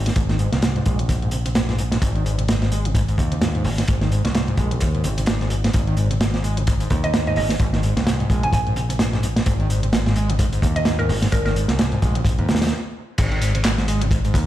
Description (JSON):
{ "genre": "breakbeat, breaks", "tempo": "129 BPM", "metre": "4/4", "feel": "swing 58% on 16ths", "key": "unclear", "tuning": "A4 = 441 Hz", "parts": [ { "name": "picked electric bass", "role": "bass", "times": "0.0-14.5 s", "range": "G#1 to D#2", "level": "-22 LUFS", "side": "equal", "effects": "none" }, { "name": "screaming distorted acid line", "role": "riff", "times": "0.1-14.4 s", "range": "G#2 to G#3", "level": "-24 LUFS", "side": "equal", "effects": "distortion, wide subtle chorus, dub echo" }, { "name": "crunchy breakbeat drum kit", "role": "drums", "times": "0.1-14.5 s", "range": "crash cymbal, hi-hat, kick drum, snare drum", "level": "-21 LUFS", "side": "equal", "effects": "none" }, { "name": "garage drum kit", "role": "drums", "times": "0.1-14.5 s", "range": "handclaps, hi-hat", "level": "-32 LUFS", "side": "left 1 dB", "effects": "none" }, { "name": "mallet-like synth pluck", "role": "melody", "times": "7.0-11.5 s", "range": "A#4 to G#5", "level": "-26 LUFS", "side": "right 2 dB", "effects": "chorus, telephone sound, dub echo" } ], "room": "light reverb", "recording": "played on a big sound system in a bare room, stone room reverb", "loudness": "-18 LUFS", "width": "side -13 dB against mid", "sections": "0.0-13.2 A section; 13.2-14.5 B section", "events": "stop 12.7-13.2; drop 13.2-14.5", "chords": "0.0 G#; 13.2 G#5" }